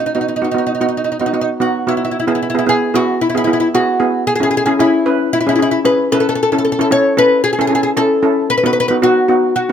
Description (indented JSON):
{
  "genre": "calypso",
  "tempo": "113 BPM",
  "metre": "4/4",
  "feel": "swing 54% on 16ths",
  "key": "E major",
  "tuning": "A4 = 440 Hz",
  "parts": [
    { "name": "oud", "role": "melody", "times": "0.0-9.7 s", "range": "D#4 to C#5", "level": "-15 LUFS", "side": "left 1 dB", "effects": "none" },
    { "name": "steel pan", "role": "accompaniment", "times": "0.2-9.7 s", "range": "B3 to B4", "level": "-16 LUFS", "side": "right 1 dB", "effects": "none" }
  ],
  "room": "light reverb",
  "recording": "close, detailed microphones",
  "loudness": "-12 LUFS",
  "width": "side -8 dB against mid",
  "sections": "0.0-2.1 A section; 2.1-9.7 B section",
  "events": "none",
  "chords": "0.0 B; 2.1 E; 4.3 C#m7; 6.4 A; 8.5 B",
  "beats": "| 0.02 0.55 1.08 1.61 | 2.14 2.67 3.20 3.73 | 4.26 4.79 5.32 5.85 | 6.38 6.91 7.44 7.97 | 8.49 9.02 9.55"
}